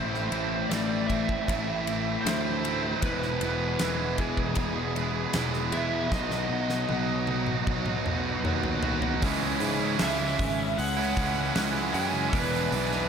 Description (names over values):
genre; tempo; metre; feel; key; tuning
rock, shoegaze and dream pop; 77 BPM; 4/4; straight; E major; A4 = 442 Hz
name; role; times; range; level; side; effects
lead guitar through a small cranked amp; melody; 0.0-13.1 s; G#4 to G#5; -33 LUFS; right 1 dB; overdrive, tape echo
crunchy overdriven guitar; riff; 0.0-13.1 s; E2 to F#4; -30 LUFS; right 7 dB; reverse reverb
thick fuzz guitar; riff; 0.0-13.1 s; E2 to C#4; -33 LUFS; left 7 dB; distortion, wide subtle chorus
picked electric bass; bass; 0.0-13.1 s; E1 to G#2; -33 LUFS; equal; none
huge arena drum kit; drums; 0.1-13.0 s; hi-hat, kick drum, ride cymbal, snare drum, toms; -33 LUFS; equal; none
overdriven electric guitar; riff; 9.2-13.1 s; C#3 to G#4; -34 LUFS; left 1 dB; none
room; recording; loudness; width
wet lush hall reverb, RT60 2.8 s; dreamy mix soaked in reverb; -25 LUFS; side -7 dB against mid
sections
0.0-9.2 A section; 9.2-13.1 B section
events
drum fill 6.1-9.2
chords
0.0 Am; 3.0 E; 6.1 B; 9.2 C#m; 12.3 E7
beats
0.70 1.48 2.25 | 3.03 3.80 4.58 5.36 | 6.13 6.91 7.68 8.46 | 9.23 10.01 10.78 11.56 | 12.33